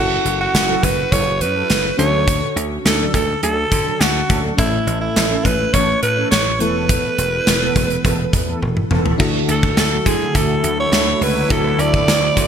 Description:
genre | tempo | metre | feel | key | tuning
1980s-style pop | 104 BPM | 4/4 | straight | unclear | A4 = 444 Hz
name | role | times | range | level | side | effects
raspy alto saxophone | melody | 0.0-12.5 s | E4 to D5 | -19 LUFS | right 2 dB | ping-pong delay
FM electric piano with soft pad layer | accompaniment | 0.0-12.5 s | A2 to A4 | -24 LUFS | left 2 dB | chorus
dry thumbed slap bass | bass | 0.0-12.5 s | E1 to D3 | -23 LUFS | equal | none
gated 80s drum kit | drums | 0.3-12.5 s | crash cymbal, hi-hat, kick drum, snare drum, toms | -18 LUFS | equal | none
mellow synth brass | stabs | 0.7-12.5 s | D3 to A4 | -26 LUFS | right 2 dB | chorus
sweeping resonant pad | sustained chords | 9.2-12.5 s | D3 to E4 | -27 LUFS | equal | chorus
room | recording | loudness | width
moderate lush hall reverb, RT60 2.1 s | bright 1980s-style digital production | -14 LUFS | side -8 dB against mid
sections
0.0-9.2 A section; 9.2-12.5 B section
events
drum fill 8.6-9.2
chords
0.0 F#m7; 2.0 Dmaj7; 4.6 A; 6.6 Esus4; 9.2 Dadd9

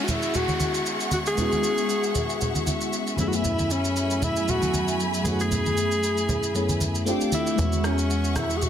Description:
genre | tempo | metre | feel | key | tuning
amapiano | 116 BPM | 4/4 | swing 55% on 16ths | E major | A4 = 439 Hz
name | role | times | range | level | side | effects
warm alto saxophone | melody | 0.0-8.7 s | C#4 to G#4 | -27 LUFS | equal | tape echo
FM electric piano | accompaniment | 0.0-8.7 s | F#2 to G#4 | -28 LUFS | left 1 dB | chorus, phaser
rich studio string section | sustained chords | 0.0-8.7 s | F#3 to D6 | -30 LUFS | equal | none
downlifter | sound effects | 0.0-3.4 s | none | -35 LUFS | equal | none
electronic shaker and rim click | drums | 0.1-8.7 s | none | -32 LUFS | right 2 dB | soft clipping on snare
congas | percussion | 0.1-8.7 s | none | -30 LUFS | right 1 dB | none
plucky analog bass | bass | 7.6-8.7 s | E2 | -25 LUFS | equal | none
room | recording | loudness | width
light reverb | dense, heavily limited modern master | -22 LUFS | side -9 dB against mid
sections
0.0-8.7 A section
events
none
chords
0.0 E69; 3.2 F#m11; 7.1 F69; 7.6 E69

